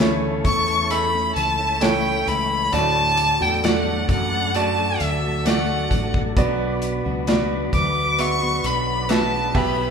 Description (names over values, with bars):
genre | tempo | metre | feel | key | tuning
pop ballad | 66 BPM | 4/4 | straight | B minor | A4 = 440 Hz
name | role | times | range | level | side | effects
bright concert grand piano | accompaniment | 0.0-9.9 s | A2 to E5 | -26 LUFS | right 4 dB | none
tonewheel organ | sustained chords | 0.0-9.9 s | E4 to B5 | -31 LUFS | right 1 dB | chorus vibrato, slow rotary speaker
fingerpicked steel-string acoustic guitar | arpeggios | 0.0-9.9 s | B2 to A4 | -28 LUFS | left 5 dB | none
fretless electric bass | bass | 0.0-9.9 s | A1 to F#2 | -27 LUFS | equal | none
modern studio drum kit | drums | 0.0-9.8 s | crash cymbal, hi-hat, kick drum, snare drum | -23 LUFS | equal | none
clear violin | melody | 0.5-9.9 s | E5 to D6 | -21 LUFS | left 1 dB | none
room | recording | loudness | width
wet large studio reverb, RT60 1.4 s | band playing live in one room | -18 LUFS | side -6 dB against mid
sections
0.0-9.9 A section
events
none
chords
0.0 A; 2.7 D; 6.4 Bm